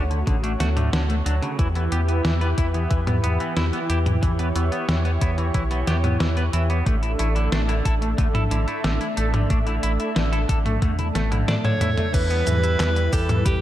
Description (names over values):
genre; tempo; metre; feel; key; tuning
synthwave; 91 BPM; 4/4; straight; E dorian; A4 = 441 Hz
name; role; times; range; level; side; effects
lush unison pad; sustained chords; 0.0-13.6 s; E3 to E5; -28 LUFS; equal; chorus, sidechain pumping
clean electric guitar; arpeggios; 0.0-13.5 s; C#3 to B4; -31 LUFS; right 3 dB; tape echo
clean electric guitar; riff; 0.0-12.1 s; D3 to A4; -31 LUFS; left 3 dB; wide subtle chorus, tape echo
round analog bass; bass; 0.0-13.6 s; A1 to A2; -23 LUFS; equal; sidechain pumping
detuned 8-bit digital drum machine; drums; 0.1-13.6 s; cabasa, crash cymbal, handclaps, hi-hat, snare drum, toms; -26 LUFS; equal; none
electronic kick drum; drums; 0.3-13.6 s; none; -23 LUFS; equal; overdrive
breathy alto saxophone; melody; 11.5-13.6 s; G4 to D5; -25 LUFS; equal; tape echo
room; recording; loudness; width
light reverb; dark, warm production; -19 LUFS; side -13 dB against mid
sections
0.0-12.1 A section; 12.1-13.6 B section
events
drum fill 10.8-12.1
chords
0.0 Dmaj7; 1.6 Em; 6.9 Asus4; 12.1 Em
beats
0.27 0.93 | 1.59 2.25 2.91 3.57 | 4.23 4.89 5.55 6.21 | 6.86 7.52 8.18 8.84 | 9.50 10.16 10.82 11.48 | 12.14 12.80 13.46